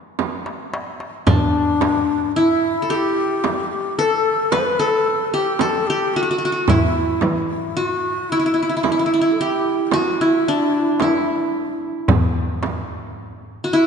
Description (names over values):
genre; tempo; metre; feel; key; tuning
Turkish makam ensemble; 111 BPM (eighths); 10/8; straight; E makam ussak; A4 = 440 Hz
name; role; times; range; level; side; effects
darbuka; percussion; 0.2-12.9 s; none; -26 LUFS; left 1 dB; none
frame drum; percussion; 0.2-12.9 s; none; -26 LUFS; right 6 dB; none
qanun; melody; 1.3-13.9 s; D4 to B4; -19 LUFS; equal; none
breathy low ney; second line; 1.3-13.9 s; D4 to C5; -23 LUFS; left 4 dB; none
warm cello; bass; 1.3-13.9 s; E2 to E3; -22 LUFS; equal; none
room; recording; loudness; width
wet concert hall reverb, RT60 2.6 s; nothing above 10.4 kHz; -17 LUFS; side -6 dB against mid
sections
0.0-13.9 A section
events
drum fill 0.2-1.3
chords
none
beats
0.19 0.73 | 1.27 1.81 2.35 2.89 3.43 3.97 4.51 5.05 5.59 6.13 | 6.68 7.22 7.76 8.30 8.84 9.38 9.92 10.46 11.01 11.55 | 12.09 12.63 13.17 13.71